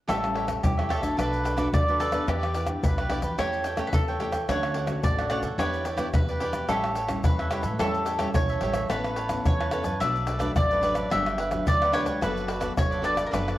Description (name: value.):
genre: samba and choro.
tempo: 109 BPM.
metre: 4/4.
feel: straight.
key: unclear.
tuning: A4 = 440 Hz.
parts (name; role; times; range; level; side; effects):
mandolin; second line; 0.1-13.6 s; G4 to E5; -28 LUFS; equal; cassette tape.
cavaquinho; accompaniment; 0.1-13.6 s; D4 to A5; -33 LUFS; right 2 dB; cassette tape.
nylon-string guitar; accompaniment; 0.1-13.6 s; F#2 to A4; -33 LUFS; left 1 dB; cassette tape.
upright bass; bass; 0.1-13.6 s; F#1 to E3; -33 LUFS; equal; none.
egg shaker, surdo, pandeiro and tamborim; percussion; 0.1-13.6 s; none; -28 LUFS; left 1 dB; none.
room: moderate spring reverb, RT60 1.7 s, studio reverb.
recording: home recording on cassette.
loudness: -23 LUFS.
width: side -15 dB against mid.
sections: 0.1-13.6 A section.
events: none.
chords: 0.1 A7; 1.2 Bm7; 2.3 Em7; 3.4 A7/E; 4.5 Dmaj7; 5.6 Em7; 6.7 A7; 8.9 Aadd9; 10.0 Bm7; 11.1 Gmaj7; 12.2 D6/F#.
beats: | 0.09 0.64 1.19 1.74 | 2.29 2.83 3.38 3.94 | 4.49 5.04 5.59 6.14 | 6.69 7.25 7.80 8.35 | 8.90 9.46 10.01 10.56 | 11.12 11.67 12.22 12.78 | 13.33.